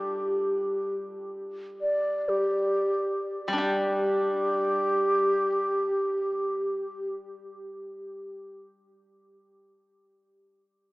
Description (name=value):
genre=chinese traditional, Chinese chamber ensemble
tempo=free time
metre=none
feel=none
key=unclear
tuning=A4 = 440 Hz
part: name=low xiao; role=melody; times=0.0-7.1 s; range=G4 to D5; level=-26 LUFS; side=equal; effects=none
part: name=steel-string zither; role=accompaniment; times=0.0-9.5 s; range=G3 to G4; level=-33 LUFS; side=equal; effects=none
room=wet cathedral reverb, RT60 5.1 s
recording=in a vast, echoing space, AM radio sound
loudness=-25 LUFS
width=side -22 dB against mid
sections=0.0-3.6 A section; 3.6-7.3 B section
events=slowing down 0.0-3.6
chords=none